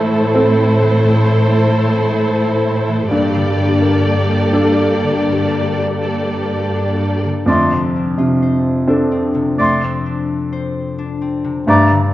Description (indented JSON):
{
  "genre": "cinematic",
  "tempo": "86 BPM",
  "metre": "3/4",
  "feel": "rubato",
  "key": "F major",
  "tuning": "A4 = 441 Hz",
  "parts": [
    { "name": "warm symphonic violin section", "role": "second line", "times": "0.0-7.2 s", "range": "A4 to D5", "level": "-20 LUFS", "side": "left 1 dB", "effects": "none" },
    { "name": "clear concert grand piano", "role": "accompaniment", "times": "0.0-12.1 s", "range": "F2 to A4", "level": "-18 LUFS", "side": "equal", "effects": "none" },
    { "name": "warm symphonic viola section", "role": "accompaniment", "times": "0.0-7.2 s", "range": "A3 to G4", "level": "-20 LUFS", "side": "right 2 dB", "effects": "none" },
    { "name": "concert harp", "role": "arpeggios", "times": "0.0-12.1 s", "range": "F2 to D5", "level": "-20 LUFS", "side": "left 4 dB", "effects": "none" },
    { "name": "warm symphonic cello section", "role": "bass", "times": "0.0-7.2 s", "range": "G2 to A2", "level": "-18 LUFS", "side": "right 1 dB", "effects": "none" },
    { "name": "clear oboe", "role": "second line", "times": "7.5-11.9 s", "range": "D5", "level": "-20 LUFS", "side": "right 1 dB", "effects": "none" },
    { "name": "dark clarinet", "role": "second line", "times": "7.5-11.9 s", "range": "A3", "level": "-21 LUFS", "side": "equal", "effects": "none" },
    { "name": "mellow concert flute", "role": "second line", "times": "7.5-12.0 s", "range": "Bb5 to C6", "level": "-20 LUFS", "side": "right 1 dB", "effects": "none" }
  ],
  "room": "moderate scoring stage reverb, RT60 2.2 s",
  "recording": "worn, warbling old tape, cassette tape, warbly pitch drift",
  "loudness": "-13 LUFS",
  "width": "side -15 dB against mid",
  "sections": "0.0-7.5 A section; 7.5-12.1 A section",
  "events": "none",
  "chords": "0.0 Am; 3.1 Gmadd9; 7.5 F6"
}